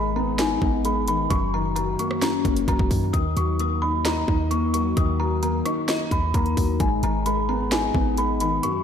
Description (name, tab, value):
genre	hip hop, trap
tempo	131 BPM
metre	4/4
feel	half-time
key	unclear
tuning	A4 = 444 Hz
part	kalimba	melody	0.0-8.8 s	Ab5 to Eb6	-27 LUFS	equal	low-pass filter, tape echo
part	dark grand piano	accompaniment	0.0-8.8 s	Gb2 to Eb5	-25 LUFS	left 2 dB	lush chorus, low-pass filter
part	clean 808-style bass	bass	0.0-8.6 s	Gb1 to Gb2	-26 LUFS	equal	none
part	trap drum kit	drums	0.4-8.7 s	hi-hat, kick drum, rim click, snare drum	-25 LUFS	equal	overdrive
room	moderate lush hall reverb, RT60 1.9 s, small room reverb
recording	dreamy mix soaked in reverb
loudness	-20 LUFS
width	side -8 dB against mid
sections	0.0-8.8 A section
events	kick muted 8.6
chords	0.0 Abm; 1.3 Gb6; 3.1 Ebm; 6.8 Abm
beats	0.39 0.85 | 1.30 1.76 2.22 2.68 | 3.14 3.60 4.05 4.51 | 4.97 5.43 5.88 6.34 | 6.80 7.26 7.72 8.18 | 8.63